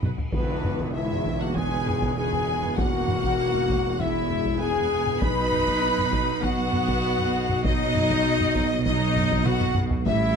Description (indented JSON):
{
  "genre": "cinematic, epic orchestral film score",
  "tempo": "99 BPM",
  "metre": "4/4",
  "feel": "straight",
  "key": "unclear",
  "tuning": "A4 = 440 Hz",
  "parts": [
    { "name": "rich symphonic violin section", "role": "melody", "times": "0.0-10.4 s", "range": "B4 to B5", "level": "-32 LUFS", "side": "left 2 dB", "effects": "none" },
    { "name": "warm symphonic violin section", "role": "second line", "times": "0.0-10.4 s", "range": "B4 to B5", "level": "-33 LUFS", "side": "left 2 dB", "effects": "none" },
    { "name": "rich symphonic viola section", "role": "accompaniment", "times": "0.0-10.4 s", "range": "E3 to B4", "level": "-31 LUFS", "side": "right 2 dB", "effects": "none" },
    { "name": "mellow tuba", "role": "bass", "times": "0.0-10.4 s", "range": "E1 to B1", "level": "-32 LUFS", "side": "right 6 dB", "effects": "none" },
    { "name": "rich symphonic cello section", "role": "bass", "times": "0.0-10.4 s", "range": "E2 to B2", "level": "-33 LUFS", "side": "right 2 dB", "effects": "none" },
    { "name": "warm symphonic double bass section", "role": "bass", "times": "0.0-10.4 s", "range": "E1 to B1", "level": "-31 LUFS", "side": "right 4 dB", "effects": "none" },
    { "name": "taiko ensemble", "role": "drums", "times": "0.0-10.4 s", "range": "none", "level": "-29 LUFS", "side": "equal", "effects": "none" },
    { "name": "mellow hollow silver concert flute", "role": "second line", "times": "0.3-10.4 s", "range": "B4 to B5", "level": "-34 LUFS", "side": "left 2 dB", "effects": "none" },
    { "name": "mellow French horn section", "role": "sustained chords", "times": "0.3-10.4 s", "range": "B3 to B4", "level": "-28 LUFS", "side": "left 5 dB", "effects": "none" },
    { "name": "warm trumpet section", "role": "stabs", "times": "0.3-10.4 s", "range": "B3 to B4", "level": "-32 LUFS", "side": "right 1 dB", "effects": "none" },
    { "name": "tam-tam", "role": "percussion", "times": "0.3-2.7 s", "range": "none", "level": "-38 LUFS", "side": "left 2 dB", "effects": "none" }
  ],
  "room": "moderate scoring stage reverb, RT60 1.8 s",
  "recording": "close, detailed microphones",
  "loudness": "-21 LUFS",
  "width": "side -6 dB against mid",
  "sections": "0.3-10.4 A section",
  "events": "drum fill 0.0-0.3, 9.5-10.1; band accent 0.3-1.0",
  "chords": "0.3 E; 5.2 B"
}